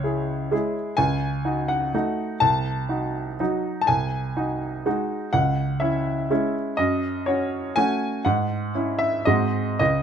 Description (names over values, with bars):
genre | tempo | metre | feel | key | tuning
classical, piano waltz | 112-133 BPM | 3/4 | rubato | C# minor | A4 = 440 Hz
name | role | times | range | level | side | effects
clear baby grand piano | solo | 0.0-10.0 s | C2 to A5 | -21 LUFS | equal | none
room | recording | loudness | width
light reverb | close, detailed microphones | -21 LUFS | side -8 dB against mid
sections
0.0-10.0 A section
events
none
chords
0.0 C#m; 1.0 D#m7b5/C#; 2.4 Cdim7; 3.9 G#7/B#; 5.3 C#m; 6.8 F#m; 8.3 C#m/G#; 9.3 G#7